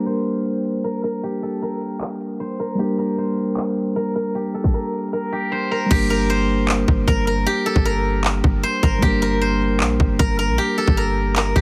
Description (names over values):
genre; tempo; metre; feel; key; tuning
hip hop, trap; 154 BPM; 4/4; half-time; G minor; A4 = 439 Hz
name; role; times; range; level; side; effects
steel-string zither; melody; 0.0-11.6 s; G4 to C5; -26 LUFS; equal; none
mellow tine electric piano; accompaniment; 0.0-11.6 s; G3 to Bb4; -26 LUFS; equal; none
trap drum kit; drums; 0.1-11.6 s; crash cymbal, handclaps, hi-hat, kick drum; -22 LUFS; equal; none
clean 808-style bass; bass; 5.9-11.6 s; G1 to Bb1; -24 LUFS; equal; none
room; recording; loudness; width
digital ambience; heavily compressed radio sound, multiband compression, low-pass filter; -20 LUFS; mono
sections
0.0-5.9 A section; 5.9-11.6 B section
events
filter sweep 0.0-5.9; drums muted 5.1-5.9; hi-hats muted 5.9-11.6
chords
0.0 Gm